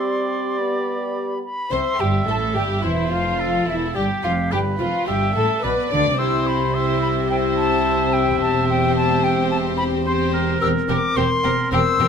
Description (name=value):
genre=quick classical-period movement for symphony orchestra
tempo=108 BPM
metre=4/4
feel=straight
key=C major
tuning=A4 = 440 Hz
part: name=bright concert flute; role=second line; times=0.0-12.1 s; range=E5 to E6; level=-24 LUFS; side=left 3 dB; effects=none
part: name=clear oboe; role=second line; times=0.0-12.1 s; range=G4 to E5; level=-26 LUFS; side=right 3 dB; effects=none
part: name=warm bassoon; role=accompaniment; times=0.0-1.4 s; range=G3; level=-26 LUFS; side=right 4 dB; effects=none
part: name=mellow French horn section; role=sustained chords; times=0.0-12.1 s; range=E3 to Bb4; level=-25 LUFS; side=left 6 dB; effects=none
part: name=rich studio violin section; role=melody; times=1.7-12.1 s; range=E4 to D5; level=-29 LUFS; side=left 5 dB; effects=none
part: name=warm chamber violin section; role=second line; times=1.7-12.1 s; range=E4 to D5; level=-29 LUFS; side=left 1 dB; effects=none
part: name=rich studio viola section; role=accompaniment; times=1.7-12.1 s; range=C4 to D5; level=-27 LUFS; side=right 1 dB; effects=none
part: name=rich studio double bass section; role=bass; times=1.7-12.1 s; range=E1 to D2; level=-26 LUFS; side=right 4 dB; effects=none
part: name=warm studio cello section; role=bass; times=1.7-12.1 s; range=E2 to D3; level=-26 LUFS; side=right 3 dB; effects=none
room=moderate recital hall reverb, RT60 1.4 s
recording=close, detailed microphones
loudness=-18 LUFS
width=side -7 dB against mid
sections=0.0-1.7 A section; 1.7-12.1 B section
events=none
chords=0.0 Gsus4; 0.6 G; 1.7 C; 4.0 G7; 6.2 C; 8.4 C/E; 10.6 C7/E